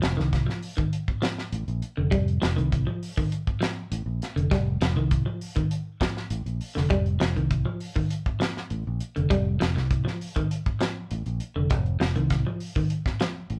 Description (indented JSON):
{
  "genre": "afrobeat",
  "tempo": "100 BPM",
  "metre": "4/4",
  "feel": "straight",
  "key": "F mixolydian",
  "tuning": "A4 = 438 Hz",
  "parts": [
    { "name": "semi-hollow electric guitar", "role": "arpeggios", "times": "0.0-13.5 s", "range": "D3 to G3", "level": "-31 LUFS", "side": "equal", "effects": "tremolo" },
    { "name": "fingered electric bass", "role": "bass", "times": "0.0-13.6 s", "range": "F1 to C2", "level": "-29 LUFS", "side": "equal", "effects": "none" },
    { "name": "tight funk drum kit", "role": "drums", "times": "0.0-13.6 s", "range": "hi-hat, kick drum, snare drum", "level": "-30 LUFS", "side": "equal", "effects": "none" }
  ],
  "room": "moderate studio reverb, RT60 0.6 s",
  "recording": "band playing live in one room, cassette tape",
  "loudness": "-27 LUFS",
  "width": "mono",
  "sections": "0.0-13.6 A section",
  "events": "none",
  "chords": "0.0 F7(no3)"
}